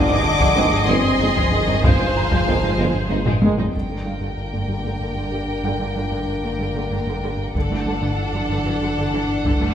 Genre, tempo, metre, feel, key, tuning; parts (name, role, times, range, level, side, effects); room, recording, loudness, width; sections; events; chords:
cinematic, hybrid orchestral and electronic film score; 63 BPM (dotted quarters); 6/8; straight; G phrygian; A4 = 440 Hz
clear symphonic violin section; melody; 0.0-3.4 s; Eb5 to D6; -25 LUFS; left 1 dB; low-pass filter
rich studio violin section; second line; 0.0-9.7 s; Ab3 to G5; -27 LUFS; left 2 dB
rich studio viola section; accompaniment; 0.0-9.7 s; D3 to Eb5; -26 LUFS; right 2 dB; low-pass filter
mellow French horn section; sustained chords; 0.0-9.7 s; D3 to D4; -26 LUFS; left 3 dB; low-pass filter
glassy wavetable pluck; arpeggios; 0.0-9.7 s; D3 to G4; -28 LUFS; right 1 dB; chorus, low-pass filter
round analog bass; riff; 0.0-9.7 s; G2 to G3; -28 LUFS; right 1 dB; low-pass filter
warm sub bass; bass; 0.0-9.7 s; G1; -30 LUFS; equal
felt-muted upright piano; texture; 0.0-9.7 s; F5 to Bb5; -38 LUFS; left 2 dB
rich symphonic cello section; bass; 0.1-9.7 s; G2; -29 LUFS; right 2 dB
taiko ensemble; drums; 0.2-9.7 s; -21 LUFS; equal
warm trombone section; sustained chords; 0.5-3.5 s; Eb3 to Ab3; -30 LUFS; right 4 dB; low-pass filter
dark tuba; bass; 0.6-3.2 s; G1; -27 LUFS; right 2 dB
rich symphonic double bass section; bass; 0.6-3.2 s; G1; -30 LUFS; right 3 dB
reverse cymbal; sound effects; 9.6-9.7 s; -36 LUFS; right 4 dB
wet recital hall reverb, RT60 1.5 s; recorded in a church or concert hall; -18 LUFS; side -9 dB against mid
0.0-3.7 A section; 3.7-9.7 B section
drum fill 3.3-3.7; filter sweep 3.7-9.7; reverse cymbal 9.6
0.0 Fm7/G; 3.7 Gm; 7.5 Dadd9/G